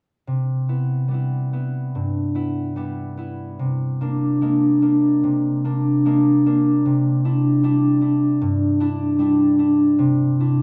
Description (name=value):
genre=classical, solo harp piece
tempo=74 BPM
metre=4/4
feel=uneven beats, rubato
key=unclear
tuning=A4 = 441 Hz
part: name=concert harp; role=solo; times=0.3-10.6 s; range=G2 to E4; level=-20 LUFS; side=equal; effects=none
room=wet recital hall reverb, RT60 1.4 s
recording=none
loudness=-19 LUFS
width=mono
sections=0.3-10.6 A section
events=none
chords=0.3 Cmaj7; 3.6 Bb9/C; 6.9 Cadd9